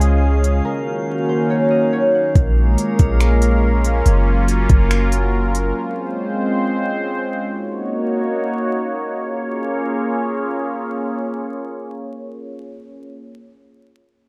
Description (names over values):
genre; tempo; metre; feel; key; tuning
hip hop, atmospheric cloud-rap; 141 BPM; 4/4; half-time; Bb minor; A4 = 440 Hz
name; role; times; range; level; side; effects
concert harp; melody; 0.0-3.8 s; Bb4 to Gb5; -23 LUFS; equal; slapback echo
sweeping resonant pad; sustained chords; 0.0-13.0 s; Db3 to Db5; -23 LUFS; equal; chorus, sidechain pumping, low-pass filter
clean 808-style bass; bass; 0.0-5.7 s; Gb1 to Db2; -18 LUFS; equal; none
smooth R&B drum kit; drums; 0.0-5.6 s; finger snaps, hi-hat, kick drum; -19 LUFS; equal; none
drifting glass-harmonics texture; texture; 0.0-4.0 s; Gb3 to F5; -33 LUFS; equal; chorus, built-in reverb, plate reverb
room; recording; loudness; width
moderate small room reverb, RT60 0.6 s; vinyl crackle; -19 LUFS; mono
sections
0.0-2.4 A section; 2.4-9.2 B section; 9.2-12.6 C section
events
break 0.7-2.4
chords
0.0 Dbmaj7; 0.7 Ebm7; 2.4 Bbm7; 4.1 Gbmaj7; 5.8 Dbmaj7; 7.5 Ebm7; 9.2 Bbm7